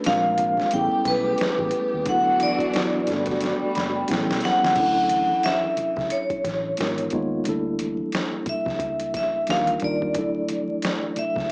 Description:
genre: R&B, neo-soul.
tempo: 89 BPM.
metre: 4/4.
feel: swing 57% on 16ths.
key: D major.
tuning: A4 = 440 Hz.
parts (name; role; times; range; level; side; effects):
mellow tine electric piano; accompaniment; 0.0-11.5 s; E3 to B5; -29 LUFS; equal; none.
warm studio string section; sustained chords; 0.0-4.8 s; C3 to G4; -33 LUFS; equal; none.
boom bap sampler-style drum kit; drums; 0.0-11.5 s; crash cymbal, hi-hat, kick drum, snare drum; -32 LUFS; equal; none.
vibraphone with hard mallets; melody; 0.1-11.5 s; B4 to G5; -26 LUFS; equal; slapback echo, plate reverb.
vintage muted fingered electric bass; bass; 0.1-11.5 s; F#1 to Eb2; -37 LUFS; equal; none.
congas; percussion; 0.2-11.5 s; none; -44 LUFS; equal; none.
room: moderate studio reverb, RT60 0.8 s.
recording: worn, warbling old tape, cassette tape, vinyl crackle, warbly pitch drift, small speaker sound.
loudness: -23 LUFS.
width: mono.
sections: 0.0-4.8 A section; 4.8-11.5 B section.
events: drum fill 3.4-4.8; tine electric piano fill 3.4-4.8.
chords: 0.0 Bb9; 0.7 A9; 2.1 D69; 3.1 Gmaj9; 4.1 A9; 4.8 Dmaj9; 6.8 G#m6; 7.5 Gm6/D; 9.5 Ebmaj9; 10.2 Dadd9.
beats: 0.04 0.71 1.39 | 2.06 2.74 3.41 4.08 | 4.76 5.43 6.11 6.78 | 7.46 8.13 8.80 9.48 | 10.15 10.83 11.50.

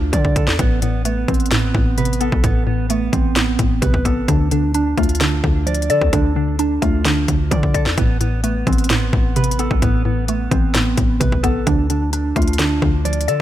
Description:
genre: hip hop, trap.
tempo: 130 BPM.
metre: 4/4.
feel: half-time.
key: A minor.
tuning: A4 = 440 Hz.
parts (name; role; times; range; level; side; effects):
mellow electric guitar; arpeggios; 0.0-13.4 s; B3 to D5; -22 LUFS; right 4 dB; analog chorus, low-pass filter, tape echo.
hard-hitting 808-style bass; bass; 0.0-13.4 s; A1 to D3; -21 LUFS; equal; none.
trap drum kit; drums; 0.1-13.4 s; hi-hat, kick drum, snare drum; -19 LUFS; equal; none.
mallet-like synth pluck; accompaniment; 0.6-13.4 s; A2 to D5; -21 LUFS; left 1 dB; chorus, phaser, low-pass filter.
room: digital ambience.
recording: none.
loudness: -15 LUFS.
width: side -12 dB against mid.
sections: 0.0-13.4 A section.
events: none.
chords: 0.0 Dm; 0.6 Amadd9; 4.3 Dm; 8.0 Amadd9; 11.7 Dm.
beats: 0.13 | 0.59 1.05 1.51 1.98 | 2.44 2.90 3.36 3.82 | 4.28 4.75 5.21 5.67 | 6.13 6.59 7.05 7.51 | 7.97 8.44 8.90 9.36 | 9.82 10.28 10.74 11.21 | 11.67 12.13 12.59 13.05.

